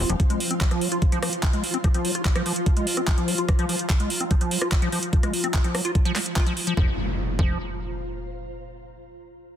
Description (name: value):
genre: psychedelic trance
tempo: 146 BPM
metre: 4/4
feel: straight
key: unclear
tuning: A4 = 440 Hz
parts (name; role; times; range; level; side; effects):
- pulsing gated texture; sustained chords; 0.0-6.8 s; F3 to F4; -31 LUFS; left 1 dB; chorus, built-in reverb, sidechain pumping
- liquid acid bass; riff; 0.0-7.6 s; F3 to F4; -28 LUFS; moving between left 4 dB and right 4 dB; chorus, auto-pan, sidechain pumping, digital delay
- tight sequencer bass; bass; 0.0-0.2, 6.8-7.6 s; Eb1 to F1; -27 LUFS; equal; none
- ethereal airy pad; texture; 0.0-8.4 s; F4 to Bb5; -38 LUFS; right 2 dB; ensemble chorus, built-in reverb, phaser, sidechain pumping
- garage drum kit; drums; 0.1-6.8 s; handclaps, hi-hat, rim click; -28 LUFS; right 1 dB; none
- electronic kick drum; drums; 0.2-7.5 s; none; -21 LUFS; equal; none
- impact; sound effects; 6.8-8.4 s; none; -31 LUFS; equal; none
room: light reverb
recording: dense, heavily limited modern master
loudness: -21 LUFS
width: side -10 dB against mid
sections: 0.0-6.8 A section; 6.8-8.4 B section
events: filter sweep on acid bass 0.0-6.8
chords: 0.0 F5